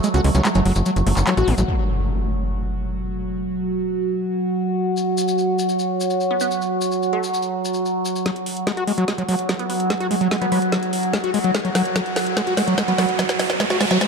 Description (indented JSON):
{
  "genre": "psychedelic trance",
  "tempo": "146 BPM",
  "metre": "4/4",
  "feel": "straight",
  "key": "F# minor",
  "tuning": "A4 = 439 Hz",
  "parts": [
    { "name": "overtone-sweeping drone", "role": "sustained chords", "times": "0.0-14.1 s", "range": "F#3 to F#4", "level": "-22 LUFS", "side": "right 1 dB", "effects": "chorus, built-in reverb, sidechain pumping" },
    { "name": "screaming distorted acid line", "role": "riff", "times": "0.0-1.6, 8.3-14.1 s", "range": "F#3 to F#4", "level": "-22 LUFS", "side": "moving between left 5 dB and right 5 dB", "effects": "distortion, chorus, auto-pan, cassette tape, sidechain pumping, ping-pong delay" },
    { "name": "garage drum kit", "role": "drums", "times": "0.0-1.7, 8.3-14.1 s", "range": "handclaps, hi-hat, snare drum", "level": "-25 LUFS", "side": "equal", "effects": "low-pass filter on hats, low-pass filter on snare, low-pass filter on room" },
    { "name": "maracas", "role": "percussion", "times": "0.0-1.7, 5.0-8.2 s", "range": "none", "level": "-32 LUFS", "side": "left 6 dB", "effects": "none" },
    { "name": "tight sequencer bass", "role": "bass", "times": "0.1-1.6 s", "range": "F#1 to C#2", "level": "-18 LUFS", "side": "equal", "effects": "none" },
    { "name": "resonant blip pluck", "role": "second line", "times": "0.6-1.0, 6.3-14.1 s", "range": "A3 to B3", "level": "-32 LUFS", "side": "right 2 dB", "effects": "phaser, sidechain pumping, high-pass filter, dub echo" },
    { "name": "impact, riser and noise sweep", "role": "sound effects", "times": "1.7-3.3, 9.3-14.1 s", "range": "none", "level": "-27 LUFS", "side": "equal", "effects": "none" },
    { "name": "electronic kick drum", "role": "drums", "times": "8.3-14.1 s", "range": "none", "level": "-34 LUFS", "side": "equal", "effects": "none" }
  ],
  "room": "moderate lush hall reverb, RT60 1.8 s, digital ambience",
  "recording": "dark, warm production",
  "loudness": "-18 LUFS",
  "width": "side -5 dB against mid",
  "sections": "0.0-1.7 A section; 1.7-8.3 B section; 8.3-14.1 C section",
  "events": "drop 0.0-1.7; break 0.0-1.7; impact 1.7-3.3; filter sweep on synth drone 1.7-8.3; build-up 8.3-14.1; drum fill 8.3-14.1; riser 9.3-14.1; noise sweep 13.2-14.1",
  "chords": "0.0 F#5; 1.7 N.C.; 8.3 F#5"
}